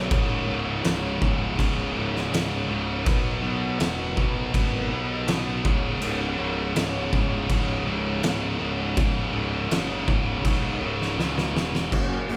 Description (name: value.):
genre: quiet-loud alternative rock.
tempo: 81 BPM.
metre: 4/4.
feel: straight.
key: C# minor.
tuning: A4 = 440 Hz.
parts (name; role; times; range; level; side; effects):
muted symphonic string section; sustained chords; 0.0-11.9 s; F#3 to C#5; -40 LUFS; equal; none.
scooped high-gain guitar; riff; 0.0-11.9 s; C#2 to B3; -32 LUFS; equal; distortion.
tight distorted guitar; riff; 0.0-11.9 s; C#2 to B3; -34 LUFS; equal; distortion.
fuzz picked electric bass; bass; 0.0-12.4 s; C#1 to C#2; -33 LUFS; equal; overdrive.
oversized low-tuned drum kit; drums; 0.1-12.4 s; crash cymbal, hi-hat, kick drum, snare drum; -28 LUFS; equal; none.
electric guitar through a small old amp; arpeggios; 11.9-12.4 s; F#2 to F#4; -32 LUFS; equal; tremolo.
room: light reverb.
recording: band playing live in one room.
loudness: -25 LUFS.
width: mono.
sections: 0.0-11.9 A section.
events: drum fill 11.2-11.9.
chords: 0.1 C#m; 3.1 B; 5.6 C#m.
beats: | 0.10 0.84 1.58 2.32 | 3.06 3.80 4.54 5.28 | 6.01 6.75 7.49 8.23 | 8.96 9.70 10.44 11.18 | 11.92.